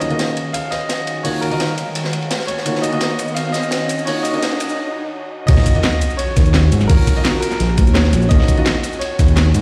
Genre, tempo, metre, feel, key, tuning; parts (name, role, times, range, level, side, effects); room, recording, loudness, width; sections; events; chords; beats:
liquid drum and bass; 170 BPM; 4/4; straight; Eb minor; A4 = 439 Hz
clear concert grand piano; melody; 0.0-9.6 s; Bb4 to F5; -27 LUFS; equal; dub echo
felt-muted upright piano; accompaniment; 0.0-8.7 s; Eb3 to Eb5; -26 LUFS; equal; digital delay
glassy FM pad; sustained chords; 0.0-9.6 s; Eb3 to F5; -29 LUFS; equal; ensemble chorus, built-in reverb
crunchy breakbeat drum kit; drums; 0.0-9.6 s; hi-hat, ride cymbal, snare drum; -28 LUFS; equal; high-pass filter on cymbals, high-pass filter on hats, high-pass filter on snare, high-pass filter on room
drum and bass drum kit; drums; 0.0-9.6 s; cabasa, crash cymbal, hi-hat, snare drum; -25 LUFS; equal
riser and sub drop; sound effects; 2.0-6.9 s; -27 LUFS; equal
smooth synth bass; bass; 5.5-9.6 s; Bb1 to Ab2; -16 LUFS; equal
electronic kick drum; drums; 5.5-9.3 s; -16 LUFS; equal
light reverb, small room ambience; played on a big sound system in a bare room, large studio reverb, high-pass filter; -17 LUFS; mono
0.0-5.5 A section; 5.5-9.6 B section
build-up 0.0-5.5; riser 2.0-4.8; break 4.8-5.5; drop 5.5-9.6; impact 5.5-6.9
0.0 Ebm7
0.19 0.54 0.90 | 1.25 1.60 1.96 2.31 | 2.66 3.01 3.37 3.72 | 4.07 4.43 4.78 5.13 | 5.49 5.84 6.19 6.54 | 6.90 7.25 7.60 7.96 | 8.31 8.66 9.01 9.37